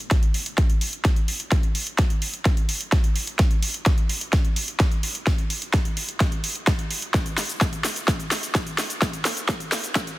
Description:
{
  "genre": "EDM, festival progressive house",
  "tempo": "128 BPM",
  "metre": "4/4",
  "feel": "straight",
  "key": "none",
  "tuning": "none",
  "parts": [
    { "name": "big-room dance drum kit", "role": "drums", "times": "0.1-10.2 s", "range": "hi-hat, shaker, snare drum", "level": "-26 LUFS", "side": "equal", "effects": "overdrive, high-pass filter on hats, studio ambience, high-pass filter on toms, high-pass filter on snare, high-pass filter on perc" },
    { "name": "electronic kick drum", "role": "drums", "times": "0.1-10.0 s", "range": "none", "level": "-20 LUFS", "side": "equal", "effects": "overdrive, studio ambience" }
  ],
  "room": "little or no reverb",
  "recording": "dense, heavily limited modern master, high-pass filter",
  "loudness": "-21 LUFS",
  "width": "side -18 dB against mid",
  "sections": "0.0-10.2 A section",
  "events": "build-up 0.0-10.2; drum fill 0.0-10.2; filter sweep 0.0-10.2",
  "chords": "none"
}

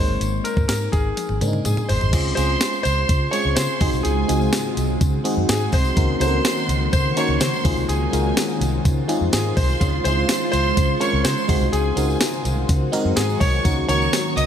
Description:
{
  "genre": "1980s-style pop",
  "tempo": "125 BPM",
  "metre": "4/4",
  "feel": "straight",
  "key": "Db major",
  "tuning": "A4 = 440 Hz",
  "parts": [
    { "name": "clear baby grand piano", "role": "melody", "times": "0.0-14.4 s", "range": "Ab4 to Eb5", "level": "-25 LUFS", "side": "left 1 dB", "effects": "none" },
    { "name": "FM electric piano", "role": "accompaniment", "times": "0.0-14.5 s", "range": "Ab3 to Bb4", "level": "-25 LUFS", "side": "left 1 dB", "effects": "chorus, phaser" },
    { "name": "vintage muted fingered electric bass", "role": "bass", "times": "0.0-14.5 s", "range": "G1 to Db3", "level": "-23 LUFS", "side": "equal", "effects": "none" },
    { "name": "clean 12-bit digital drum machine", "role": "drums", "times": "0.2-14.5 s", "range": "crash cymbal, hi-hat, kick drum, snare drum, tambourine, toms", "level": "-22 LUFS", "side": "equal", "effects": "none" },
    { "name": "tambourine", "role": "percussion", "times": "0.2-14.5 s", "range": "none", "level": "-37 LUFS", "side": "left 4 dB", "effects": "none" },
    { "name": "warm studio violin section", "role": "second line", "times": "1.6-14.5 s", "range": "Ab5 to Eb6", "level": "-29 LUFS", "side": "equal", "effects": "analog delay" },
    { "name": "granular cloud pad", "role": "sustained chords", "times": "2.9-14.5 s", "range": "Db3 to C5", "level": "-26 LUFS", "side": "right 2 dB", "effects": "built-in reverb" }
  ],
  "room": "moderate church reverb, RT60 3.2 s",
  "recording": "dreamy mix soaked in reverb",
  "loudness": "-17 LUFS",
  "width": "side -9 dB against mid",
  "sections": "0.0-2.1 A section; 2.1-14.5 B section",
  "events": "drum fill 1.2-2.1",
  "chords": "0.0 Abadd9; 2.1 Dbmaj7; 3.8 Ab7; 6.0 Ebm7/Db; 7.7 Fm7; 9.8 Dbmaj7; 11.5 Ab7; 13.7 Ebm7/Db"
}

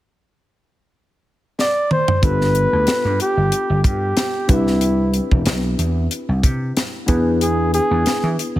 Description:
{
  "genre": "polished 1980s jazz-funk pop",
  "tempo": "93 BPM",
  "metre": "4/4",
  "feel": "swing 54% on 16ths",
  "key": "unclear",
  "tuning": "A4 = 440 Hz",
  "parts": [
    { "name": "mellow flugelhorn", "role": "melody", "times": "1.6-8.3 s", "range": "E4 to D5", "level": "-20 LUFS", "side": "equal", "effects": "none" },
    { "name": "tight funk drum kit", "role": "drums", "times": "1.6-8.5 s", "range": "hi-hat, kick drum, snare drum, toms", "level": "-20 LUFS", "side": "equal", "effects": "none" },
    { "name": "tine electric piano", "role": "accompaniment", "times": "2.2-8.6 s", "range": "B3 to B4", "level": "-24 LUFS", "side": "left 2 dB", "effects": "wide subtle chorus" },
    { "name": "vintage slap bass", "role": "bass", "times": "2.2-8.6 s", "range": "E1 to E3", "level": "-19 LUFS", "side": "equal", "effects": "none" }
  ],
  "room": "small room reverb",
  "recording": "none",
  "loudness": "-16 LUFS",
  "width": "side -15 dB against mid",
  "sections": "0.0-2.2 A section; 2.2-8.6 B section",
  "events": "drum fill 1.6-2.2",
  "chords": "0.0 N.C.; 2.2 G7; 4.5 Cmaj7; 7.1 E7"
}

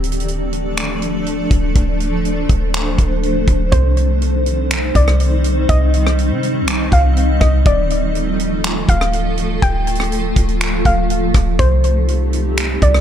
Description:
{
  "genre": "hip hop, atmospheric cloud-rap",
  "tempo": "122 BPM",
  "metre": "4/4",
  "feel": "half-time",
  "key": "C dorian",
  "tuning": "A4 = 440 Hz",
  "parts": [
    { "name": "granular cloud pad", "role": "sustained chords", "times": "0.0-13.0 s", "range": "Eb3 to Eb5", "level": "-19 LUFS", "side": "equal", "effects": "built-in reverb, sidechain pumping" },
    { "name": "clean 808-style bass", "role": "bass", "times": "0.0-13.0 s", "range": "D1 to C3", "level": "-17 LUFS", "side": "equal", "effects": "none" },
    { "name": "tight funk drum kit", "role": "drums", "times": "0.0-13.0 s", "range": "finger snaps, hi-hat, kick drum, rim click", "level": "-18 LUFS", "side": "equal", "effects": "none" },
    { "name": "soft round pluck", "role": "melody", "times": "3.7-13.0 s", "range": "C5 to G5", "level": "-21 LUFS", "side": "left 1 dB", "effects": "chorus, ping-pong delay" }
  ],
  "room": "studio reverb",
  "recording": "none",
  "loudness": "-14 LUFS",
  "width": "side -10 dB against mid",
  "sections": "0.0-3.7 A section; 3.7-13.0 B section",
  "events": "none",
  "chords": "0.0 Dm; 3.7 Cmadd9; 7.7 Dm; 11.6 Cmadd9"
}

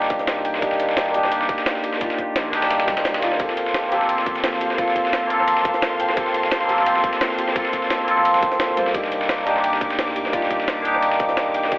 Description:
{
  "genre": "liquid drum and bass",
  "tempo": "173 BPM",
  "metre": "4/4",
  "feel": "straight",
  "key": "G minor",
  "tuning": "A4 = 440 Hz",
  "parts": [
    { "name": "barky tine electric piano", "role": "accompaniment", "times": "0.0-11.8 s", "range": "Bb3 to C5", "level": "-20 LUFS", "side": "equal", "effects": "phaser, dub echo" },
    { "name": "felt-muted upright piano", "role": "arpeggios", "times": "0.0-11.8 s", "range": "G3 to G5", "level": "-29 LUFS", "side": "equal", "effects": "low-pass filter, dub echo" },
    { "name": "saturated sub bass", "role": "bass", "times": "0.0-11.8 s", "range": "F1 to D2", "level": "-46 LUFS", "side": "equal", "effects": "none" },
    { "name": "dusty soul sampler-style drum kit", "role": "drums", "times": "0.0-11.8 s", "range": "ride cymbal, snare drum", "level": "-27 LUFS", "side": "equal", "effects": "high-pass filter on snare, high-pass filter on cymbals, high-pass filter on room, dub echo" },
    { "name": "electronic kick drum", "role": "drums", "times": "0.1-11.8 s", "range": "none", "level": "-28 LUFS", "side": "equal", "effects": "none" },
    { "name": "jungle sampler-style drum kit", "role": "drums", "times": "0.1-11.8 s", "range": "hi-hat, snare drum", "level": "-27 LUFS", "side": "equal", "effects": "dub echo" },
    { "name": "swell", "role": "sound effects", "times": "2.8-3.4 s", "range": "none", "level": "-37 LUFS", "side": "left 1 dB", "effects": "none" },
    { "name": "rich studio string section", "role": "sustained chords", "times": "3.4-11.8 s", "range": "F5 to D6", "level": "-27 LUFS", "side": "equal", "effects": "none" }
  ],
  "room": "wet spring reverb, RT60 2.0 s, digital ambience",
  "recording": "echo-heavy mix, telephone sound",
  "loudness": "-18 LUFS",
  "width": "side -22 dB against mid",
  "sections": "0.0-11.8 A section",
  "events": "none",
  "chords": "0.0 Cm9; 3.4 Gm11; 8.9 Cm9"
}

